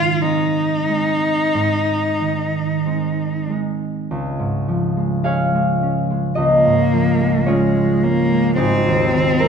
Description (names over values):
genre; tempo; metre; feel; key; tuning
classical, romantic duo for cello and harp; 45-55 BPM; 4/4; rubato; Db major; A4 = 438 Hz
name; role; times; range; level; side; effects
rich cello; melody; 0.0-9.5 s; Ab3 to F4; -19 LUFS; left 2 dB; none
concert harp; accompaniment; 0.0-9.5 s; Ab1 to F5; -18 LUFS; right 1 dB; none
room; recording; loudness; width
moderate scoring stage reverb, RT60 1.6 s; minimal, uncompressed stereo recording; -16 LUFS; side -6 dB against mid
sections
0.0-4.1 A section; 4.1-9.5 B section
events
none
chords
0.0 Ab; 4.1 Db; 8.6 Ab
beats
0.22 1.54 2.85 | 4.11 5.26 6.38 7.48 | 8.59